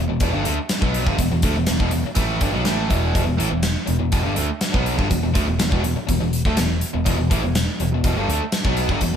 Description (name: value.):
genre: hard rock.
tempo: 123 BPM.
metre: 4/4.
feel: straight.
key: unclear.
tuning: A4 = 441 Hz.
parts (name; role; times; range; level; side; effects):
overdriven semi-hollow guitar; riff; 0.0-9.2 s; E2 to B3; -25 LUFS; right 9 dB; spring reverb.
tight distorted guitar; riff; 0.0-9.2 s; E2 to B3; -25 LUFS; left 7 dB; distortion.
modern bright picked electric bass; bass; 0.0-9.1 s; E1 to D2; -23 LUFS; equal; none.
gated 80s drum kit; drums; 0.2-9.1 s; hi-hat, kick drum, snare drum; -22 LUFS; equal; none.
room: light reverb.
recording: band playing live in one room.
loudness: -18 LUFS.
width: side -8 dB against mid.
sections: 0.0-9.2 A section.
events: none.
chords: 0.0 E5.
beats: 0.21 0.70 | 1.19 1.68 2.17 2.66 | 3.15 3.64 4.13 4.62 | 5.11 5.60 6.09 6.58 | 7.07 7.55 8.04 8.53 | 9.02.